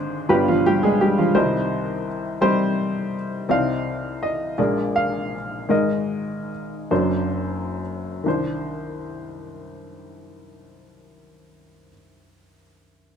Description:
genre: acoustic folk-pop ballad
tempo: 42-57 BPM (dotted quarters)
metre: 6/8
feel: straight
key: C minor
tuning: A4 = 440 Hz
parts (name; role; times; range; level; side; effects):
- warm upright piano; solo; 0.0-13.2 s; F#1 to F5; -20 LUFS; equal; none
room: moderate studio reverb, RT60 0.8 s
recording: none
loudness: -20 LUFS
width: side -7 dB against mid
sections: 0.0-3.5 A section; 3.5-8.3 B section; 8.3-13.2 C section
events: slowing down 3.5-8.3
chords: 0.3 G7; 1.4 Cm; 3.5 Cmadd9; 4.6 Bb7; 5.7 Absus2; 6.9 D7/F#; 8.3 Cmadd9

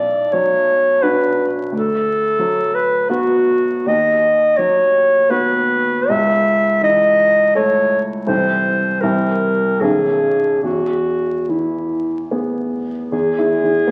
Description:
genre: classical, romantic duo for clarinet and grand piano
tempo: 70-90 BPM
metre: 3/4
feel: rubato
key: E major from 3.9 s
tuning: A4 = 437 Hz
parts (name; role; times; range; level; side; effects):
- mellow clarinet; melody; 0.0-13.9 s; E4 to E5; -17 LUFS; equal; none
- clear baby grand piano; accompaniment; 0.0-13.9 s; B1 to Bb4; -23 LUFS; equal; none
room: wet recital hall reverb, RT60 1.5 s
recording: very old 78 rpm record, vinyl crackle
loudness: -16 LUFS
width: mono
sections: 0.0-13.1 A section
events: none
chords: 0.0 Bm; 1.7 Bm/D; 3.9 B/D#; 6.1 A/C#; 8.3 Am/C; 9.0 C7; 9.8 B13; 10.6 E

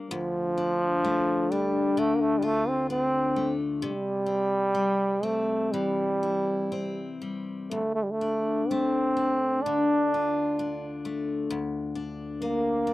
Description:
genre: celtic folk, Celtic slow air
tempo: 63 BPM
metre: 4/4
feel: uneven beats, rubato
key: D minor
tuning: A4 = 439 Hz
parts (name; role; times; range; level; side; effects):
- picked steel-string acoustic guitar; accompaniment; 0.0-12.9 s; D2 to G4; -29 LUFS; left 4 dB; none
- trombone with straight mute; melody; 0.1-12.9 s; F3 to D4; -25 LUFS; right 1 dB; none
room: light reverb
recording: dry, close 1970s-style studio recording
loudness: -24 LUFS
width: side -17 dB against mid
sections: 0.0-12.9 A section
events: none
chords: 0.1 Dm; 3.8 C; 7.7 Dm; 11.5 Bb/D

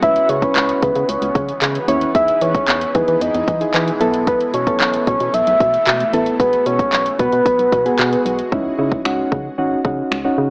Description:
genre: dance-pop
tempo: 113 BPM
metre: 4/4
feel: straight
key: C# minor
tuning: A4 = 440 Hz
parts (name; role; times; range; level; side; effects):
- soft octave-layered synth lead; melody; 0.0-8.2 s; B4 to E5; -16 LUFS; equal; chorus
- soft electric-piano-like synth keys; accompaniment; 0.0-10.5 s; B3 to C#5; -20 LUFS; equal; chorus, sidechain pumping
- shimmering ambient pad; sustained chords; 0.0-8.5 s; B2 to F#4; -29 LUFS; equal; chorus, built-in reverb, phaser, sidechain pumping
- organ-like FM bass; bass; 0.0-10.5 s; G#1 to E3; -23 LUFS; equal; sidechain pumping
- house drum kit; drums; 0.0-10.2 s; finger snaps, handclaps, hi-hat, kick drum; -20 LUFS; equal; overdrive
room: moderate plate reverb, RT60 1.1 s, digital ambience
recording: worn, warbling old tape, cassette tape, warbly pitch drift, small speaker sound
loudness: -14 LUFS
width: side -36 dB against mid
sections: 0.0-8.5 A section; 8.5-10.5 B section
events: none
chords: 0.0 C#m7; 2.1 Emaj7; 4.0 B7sus4; 6.4 G#m7/B; 8.5 C#madd9

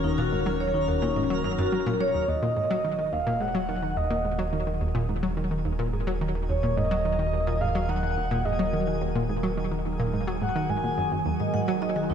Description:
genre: ambient, sequencer-driven space music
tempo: 107 BPM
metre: 4/4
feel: straight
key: Eb minor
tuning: A4 = 440 Hz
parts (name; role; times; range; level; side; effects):
- evolving wavetable pad; sustained chords; 0.0-12.1 s; Eb3 to Db5; -32 LUFS; right 1 dB; chorus, built-in reverb, phaser
- vibraphone with medium mallets; arpeggios; 0.0-2.1, 11.4-12.1 s; Db4 to Gb5; -30 LUFS; moving between left 7 dB and right 1 dB; auto-pan, tape echo
- analog pluck; riff; 0.0-12.1 s; Eb2 to Gb3; -28 LUFS; equal; chorus, tape echo
- round analog bass; bass; 0.0-12.1 s; Eb1; -32 LUFS; right 1 dB; none
- twinkling granular texture; texture; 0.0-12.1 s; Ab4 to Bb4; -39 LUFS; equal; built-in reverb
- breathy flute-like synth lead; melody; 2.0-11.3 s; Db5 to Ab5; -30 LUFS; right 1 dB; chorus, tape echo
room: wet echo chamber reverb, RT60 2.2 s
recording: echo-heavy mix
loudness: -24 LUFS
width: side -8 dB against mid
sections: 0.0-2.3 A section; 2.3-12.1 B section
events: fade-in on ambient pad 2.3-12.1; fade-in on synth texture 2.3-12.1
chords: 0.0 Ebm7; 2.3 Ebm

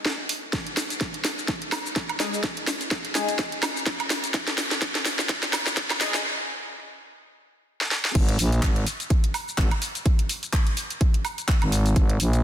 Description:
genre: bass house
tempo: 126 BPM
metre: 4/4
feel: swing 56% on 16ths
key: unclear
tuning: A4 = 440 Hz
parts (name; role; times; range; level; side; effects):
- garage drum kit; drums; 0.1-12.4 s; crash cymbal, handclaps, hi-hat, shaker, snare drum, woodblock; -25 LUFS; equal; overdrive
- electronic kick drum; drums; 0.5-12.1 s; none; -24 LUFS; equal; overdrive
- band-passed chord stab; stabs; 2.2-6.2 s; G#3 to G#4; -32 LUFS; left 4 dB; phaser, wide subtle chorus, sidechain pumping, ping-pong delay
- growling FM bass; bass; 8.2-12.4 s; G#1 to A#1; -22 LUFS; equal; overdrive, sidechain pumping
room: moderate lush hall reverb, RT60 2.2 s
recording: dense, heavily limited modern master, high-pass filter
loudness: -22 LUFS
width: side -10 dB against mid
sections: 0.0-8.2 A section; 8.2-12.4 B section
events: build-up 0.0-8.2; drum fill 0.0-6.2, 7.8-8.2; filter sweep on synth stab 0.0-8.2; break 6.2-8.2; drop 8.2-12.4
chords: 0.0 G#5; 8.2 G#sus2

